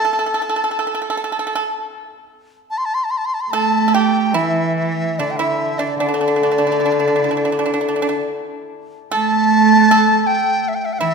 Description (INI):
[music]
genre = chinese traditional, Chinese chamber ensemble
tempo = 72-78 BPM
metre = 4/4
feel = rubato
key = A yu mode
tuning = A4 = 437 Hz
[part]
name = bright reedy large dizi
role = melody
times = 0.0-11.1 s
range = D5 to C6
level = -19 LUFS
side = left 2 dB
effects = none
[part]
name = pipa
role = second line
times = 0.0-11.1 s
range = D4 to A4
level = -22 LUFS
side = right 4 dB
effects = none
[part]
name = hammered dulcimer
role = accompaniment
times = 0.0-9.1 s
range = A2 to A4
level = -22 LUFS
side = left 4 dB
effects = none
[part]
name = dark cello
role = second line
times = 3.5-11.1 s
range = D3 to A3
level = -19 LUFS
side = right 8 dB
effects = none
[sound]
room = wet scoring stage reverb, RT60 2.1 s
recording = minimal, uncompressed stereo recording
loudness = -15 LUFS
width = side -5 dB against mid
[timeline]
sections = 0.0-2.7 A section; 2.7-11.1 B section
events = none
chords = none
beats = 0.23 1.04 1.86 | 2.69 3.51 4.34 5.17 | 5.99 6.78 7.57 8.34 | 9.12 9.90 10.69